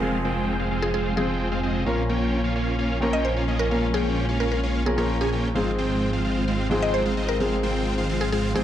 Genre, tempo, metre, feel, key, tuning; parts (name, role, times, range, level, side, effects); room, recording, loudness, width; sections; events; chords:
EDM; 130 BPM; 4/4; straight; F minor; A4 = 440 Hz
mallet-like synth pluck; melody; 0.0-8.6 s; Ab4 to Eb5; -29 LUFS; equal; chorus, digital delay
warm concert grand piano; accompaniment; 0.0-8.6 s; Ab2 to Bb4; -28 LUFS; left 1 dB; digital delay
muted chamber string section; sustained chords; 0.0-8.6 s; F3 to Ab4; -31 LUFS; left 2 dB; low-pass filter
dense compressed supersaw; riff; 0.0-8.6 s; Ab3 to Ab5; -27 LUFS; right 1 dB; cassette tape, low-pass filter, digital delay
wide detuned saw bass; bass; 0.0-8.6 s; F1 to Bb1; -28 LUFS; equal; chorus
downlifter; sound effects; 0.0-1.9 s; -40 LUFS; right 1 dB
light reverb, digital ambience; -21 LUFS; side -11 dB against mid
0.0-8.6 A section
0.0 Fm; 1.9 Bbm; 5.6 Fm/Ab